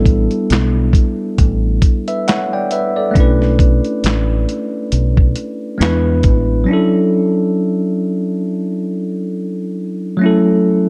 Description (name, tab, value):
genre	lo-fi hip hop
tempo	68 BPM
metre	4/4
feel	swing 56% on 16ths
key	unclear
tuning	A4 = 440 Hz
part	bell-like tine electric piano	accompaniment	0.0-10.9 s	F#3 to G5	-18 LUFS	equal	low-pass filter
part	deep dub fingered electric bass	bass	0.0-6.6 s	A1 to E2	-18 LUFS	equal	none
part	dusty soul sampler-style drum kit	drums	0.1-6.5 s	handclaps, hi-hat, kick drum, snare drum	-17 LUFS	equal	none
room	light reverb, digital ambience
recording	dark, warm production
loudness	-15 LUFS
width	mono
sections	0.0-6.7 A section; 6.7-10.9 B section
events	none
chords	0.0 A9sus4; 3.1 Bm11; 5.8 E7; 6.7 Dmaj9; 10.2 F#m7